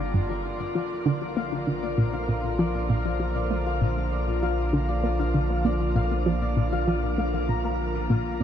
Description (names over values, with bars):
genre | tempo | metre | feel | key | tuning
ambient, sequencer-driven space music | 98 BPM | 4/4 | straight | unclear | A4 = 441 Hz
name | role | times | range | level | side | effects
sweeping resonant pad | sustained chords | 0.0-8.4 s | D3 to Bb4 | -31 LUFS | right 1 dB | chorus, phaser
Celtic harp | arpeggios | 0.0-8.4 s | F4 to Bb5 | -31 LUFS | left 4 dB | auto-pan, ping-pong delay
round analog bass | bass | 0.0-8.4 s | G1 to Bb1 | -29 LUFS | equal | none
analog pluck | riff | 0.1-8.4 s | G2 to Bb3 | -27 LUFS | equal | chorus, ping-pong delay
room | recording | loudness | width
moderate shimmer reverb, RT60 8.5 s | none | -23 LUFS | side -9 dB against mid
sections
0.0-8.4 A section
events
filter sweep on synth arpeggio sound 0.0-8.4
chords
0.0 Gm7; 0.8 Bb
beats
0.14 | 0.75 1.36 1.98 2.59 | 3.20 3.81 4.43 5.04 | 5.65 6.26 6.87 7.49 | 8.10